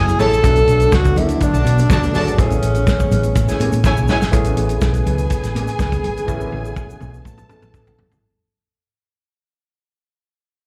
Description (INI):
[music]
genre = disco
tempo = 123 BPM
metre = 4/4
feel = straight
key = A major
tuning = A4 = 441 Hz
[part]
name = breathy tenor saxophone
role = melody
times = 0.0-4.1 s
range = C#4 to A4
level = -22 LUFS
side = equal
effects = slapback echo
[part]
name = dark studio string section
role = second line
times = 0.0-8.2 s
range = E4 to A5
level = -27 LUFS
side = equal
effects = slapback echo
[part]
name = barky tine electric piano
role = accompaniment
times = 0.0-8.3 s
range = E3 to A4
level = -28 LUFS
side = equal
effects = overdrive, slapback echo
[part]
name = mellow French horn section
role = sustained chords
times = 0.0-8.2 s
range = F#3 to B4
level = -32 LUFS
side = equal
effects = none
[part]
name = hollow-body short-scale fingered electric bass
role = bass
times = 0.0-8.2 s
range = F#1 to B2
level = -21 LUFS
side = equal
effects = none
[part]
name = mellow electric guitar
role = accompaniment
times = 0.1-8.2 s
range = A3 to B4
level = -32 LUFS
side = equal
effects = none
[part]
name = warm soul drum kit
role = drums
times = 0.1-8.2 s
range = hi-hat, kick drum, snare drum, toms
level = -22 LUFS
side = equal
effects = none
[part]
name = congas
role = percussion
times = 0.1-8.1 s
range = none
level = -31 LUFS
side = equal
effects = none
[part]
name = egg shaker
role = percussion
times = 0.1-8.2 s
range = none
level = -42 LUFS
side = equal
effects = none
[sound]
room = light reverb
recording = live gig heard through the venue's PA, club reverb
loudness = -16 LUFS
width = mono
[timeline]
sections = 0.0-4.3 A section; 4.3-8.2 B section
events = drum fill 3.8-4.3, 6.3-8.2; fade-out 4.3-8.2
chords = 0.4 Bm7; 2.4 Amaj9